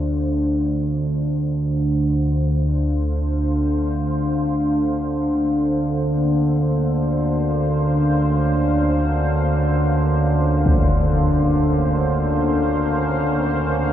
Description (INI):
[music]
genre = dark ambient drone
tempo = free time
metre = none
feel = none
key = unclear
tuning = A4 = 441 Hz
[part]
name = deep dark ambient pad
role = sustained chords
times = 0.0-13.9 s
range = A3 to F5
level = -25 LUFS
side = equal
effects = chorus, built-in reverb
[part]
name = analog drone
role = drone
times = 0.0-13.9 s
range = D2 to D3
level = -18 LUFS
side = equal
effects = chorus
[part]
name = impact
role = percussion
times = 10.7-10.9 s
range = none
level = -23 LUFS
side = equal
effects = low-pass filter on sfx
[sound]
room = wet cathedral reverb, RT60 5.4 s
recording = in a vast, echoing space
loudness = -17 LUFS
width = side -10 dB against mid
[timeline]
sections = 0.0-13.9 A section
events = fade-in on ambient pad 0.0-13.9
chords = 0.0 Dm7; 5.0 Bbmadd9